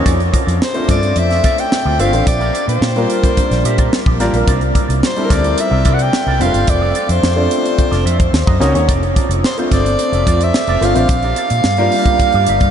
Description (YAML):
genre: polished 1980s jazz-funk pop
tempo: 109 BPM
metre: 4/4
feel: straight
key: unclear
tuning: A4 = 440 Hz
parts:
  - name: warm grand piano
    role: accompaniment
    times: 0.0-12.7 s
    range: G3 to D5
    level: -18 LUFS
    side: left 1 dB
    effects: analog chorus
  - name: electric guitar with an envelope filter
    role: riff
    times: 0.0-12.7 s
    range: C4 to E5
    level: -25 LUFS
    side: right 4 dB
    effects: analog chorus
  - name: vintage muted fingered electric bass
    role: bass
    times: 0.0-12.7 s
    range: F1 to C3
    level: -17 LUFS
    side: equal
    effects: tube saturation
  - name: tight funk drum kit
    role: drums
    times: 0.1-12.7 s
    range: hi-hat, kick drum, snare drum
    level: -17 LUFS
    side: equal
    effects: none
  - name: breathy soprano saxophone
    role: melody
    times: 0.6-12.7 s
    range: C5 to G5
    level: -18 LUFS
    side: right 1 dB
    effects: ping-pong delay
room: wet huge ambient reverb, RT60 7.5 s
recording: dreamy mix soaked in reverb, nothing above 10.9 kHz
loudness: -12 LUFS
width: side -8 dB against mid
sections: 0.0-12.7 A section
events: none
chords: 0.1 Dm7/F; 2.3 Bb6; 4.5 C9; 6.4 F6; 8.3 Ebm7; 8.9 Dm7/F; 11.1 Bb6